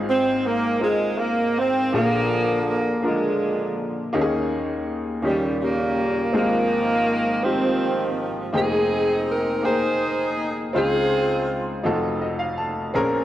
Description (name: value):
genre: gospel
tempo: 54 BPM (dotted quarters)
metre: 6/8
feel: straight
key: Ab major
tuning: A4 = 440 Hz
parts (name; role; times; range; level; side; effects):
- bright baby grand piano; accompaniment; 0.0-13.2 s; F1 to A5; -24 LUFS; left 1 dB; none
- bright saxophone section; melody; 0.1-11.8 s; Bb2 to C5; -21 LUFS; right 1 dB; cassette tape
room: wet lush hall reverb, RT60 2.4 s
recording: home recording on cassette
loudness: -20 LUFS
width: side -13 dB against mid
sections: 0.0-8.5 A section; 8.5-13.2 B section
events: grand piano fill 11.8-12.9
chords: 0.0 Ab6; 1.9 Bb7; 4.1 Eb7sus4; 5.2 Eb7; 6.3 Ab6; 8.5 Fm11; 10.7 Dbmaj9; 11.8 F7b9